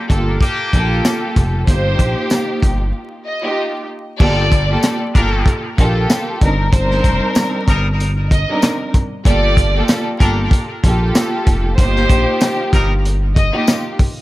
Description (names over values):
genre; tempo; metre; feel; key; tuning
hip hop, boom-bap hip-hop; 95 BPM; 4/4; swing 57% on 16ths; G minor; A4 = 439 Hz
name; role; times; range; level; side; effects
muted trumpet section; stabs; 0.0-1.2, 5.1-12.9 s; G3 to Bb4; -24 LUFS; left 2 dB; high-pass filter, low-pass filter, tape echo
warm studio string section; accompaniment; 0.1-14.0 s; G3 to Bb4; -20 LUFS; equal; cassette tape, high-pass filter, low-pass filter
smooth synth bass; bass; 0.1-13.5 s; F1 to Bb1; -17 LUFS; equal; none
crunchy breakbeat drum kit; drums; 0.1-14.2 s; crash cymbal, hi-hat, kick drum, rim click, snare drum; -15 LUFS; equal; none
tambourine; percussion; 1.0-13.8 s; none; -30 LUFS; left 4 dB; none
warm chamber violin section; melody; 1.7-13.6 s; C5 to Eb5; -21 LUFS; equal; high-pass filter, low-pass filter
room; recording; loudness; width
small room reverb; vinyl crackle; -13 LUFS; side -17 dB against mid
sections
0.0-4.2 A section; 4.2-14.2 B section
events
break 2.9-4.2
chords
0.0 Gm9; 1.7 F9sus4/G; 4.2 Gm9; 6.4 Cm9; 9.3 Gm9; 11.8 F9sus4/G